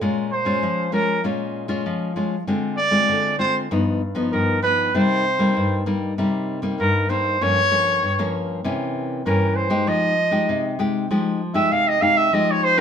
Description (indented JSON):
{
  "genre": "samba",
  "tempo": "97 BPM",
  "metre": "4/4",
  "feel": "straight",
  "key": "F minor",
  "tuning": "A4 = 440 Hz",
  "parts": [
    { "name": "nylon-string guitar", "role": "accompaniment", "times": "0.0-12.8 s", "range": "G2 to G4", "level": "-21 LUFS", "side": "left 2 dB", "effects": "none" },
    { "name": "warm trumpet", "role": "melody", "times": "0.3-12.8 s", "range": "Bb4 to F5", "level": "-19 LUFS", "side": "right 2 dB", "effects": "none" }
  ],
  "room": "moderate studio reverb, RT60 0.9 s",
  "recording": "minimal, uncompressed stereo recording",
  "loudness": "-18 LUFS",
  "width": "side -8 dB against mid",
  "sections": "0.0-12.8 A section",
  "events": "trumpet solo 0.0-12.8",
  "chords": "0.0 Bbm7; 2.5 Dm7b5; 3.7 Gaug7; 4.9 Cm7; 7.4 Gm7b5; 8.6 C7b9; 9.9 Fm9"
}